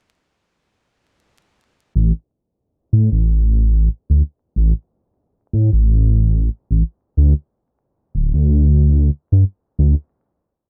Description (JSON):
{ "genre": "trip hop", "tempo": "92 BPM", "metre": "4/4", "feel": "swing 57% on 16ths", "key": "unclear", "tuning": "A4 = 435 Hz", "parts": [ { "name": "dark detuned saw bass", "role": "bass", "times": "2.0-9.9 s", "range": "D1 to A2", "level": "-15 LUFS", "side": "equal", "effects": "none" } ], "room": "little or no reverb", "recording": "dry, gritty hardware recording, vinyl crackle, low-pass filter", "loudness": "-17 LUFS", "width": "mono", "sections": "2.0-10.7 A section", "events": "filter sweep 2.0-10.7", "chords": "none", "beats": "| 1.96 2.61 3.26 3.91 | 4.56 5.22 5.87 6.52 | 7.17 7.82 8.48 9.13 | 9.78" }